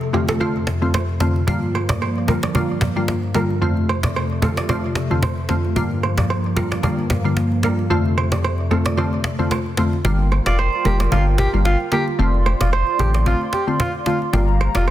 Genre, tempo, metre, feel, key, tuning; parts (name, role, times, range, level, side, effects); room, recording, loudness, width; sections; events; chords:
afrobeats; 112 BPM; 4/4; swing 55% on 16ths; G minor; A4 = 440 Hz
glassy wavetable pluck; accompaniment; 0.0-14.9 s; F2 to F4; -22 LUFS; left 1 dB; chorus
hollow soft pad; sustained chords; 0.0-14.9 s; F2 to C6; -24 LUFS; equal; chorus
cajon; drums; 0.0-14.9 s; -24 LUFS; equal
kora; riff; 0.1-14.9 s; G4 to D5; -25 LUFS; right 5 dB; digital delay
warm sub bass; bass; 10.0-14.9 s; F1 to A1; -18 LUFS; equal
warm alto saxophone; melody; 10.5-14.9 s; F4 to G4; -25 LUFS; left 1 dB; digital delay
light reverb, small room ambience; dense, heavily limited modern master; -17 LUFS; side -13 dB against mid
0.0-10.0 A section; 10.0-14.9 B section
kick muted 7.9-10.0
0.0 Dm7/F; 1.5 Gm7; 3.6 Dm7/F; 5.8 Gm7; 7.9 Dm7/F; 10.0 Gm7; 12.2 Dm7/F; 14.3 Gm7